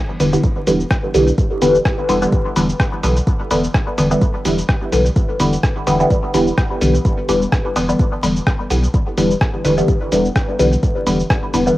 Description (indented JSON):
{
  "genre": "dub techno",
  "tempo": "127 BPM",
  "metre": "4/4",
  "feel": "swing 55% on 16ths",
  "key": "E minor",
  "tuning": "A4 = 441 Hz",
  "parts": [
    { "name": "filtered dub chord stab", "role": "stabs", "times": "0.2-11.8 s", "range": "D3 to B3", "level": "-16 LUFS", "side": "equal", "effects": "phaser, sidechain pumping, dub echo" },
    { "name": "warm sub bass", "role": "bass", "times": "0.2-11.7 s", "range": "E1 to B1", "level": "-21 LUFS", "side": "equal", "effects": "sidechain pumping" },
    { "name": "lo-fi sampler-style drum kit", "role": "drums", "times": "0.2-11.8 s", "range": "hi-hat, rim click, shaker", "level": "-24 LUFS", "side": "equal", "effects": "cassette tape, dub echo" },
    { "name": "electronic kick drum", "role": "drums", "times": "0.4-11.4 s", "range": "none", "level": "-17 LUFS", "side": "equal", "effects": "cassette tape" }
  ],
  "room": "light reverb, digital ambience",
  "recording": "home recording on cassette, vinyl crackle",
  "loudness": "-14 LUFS",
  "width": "side -16 dB against mid",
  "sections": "0.0-11.8 A section",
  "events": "none",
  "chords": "0.0 Em7"
}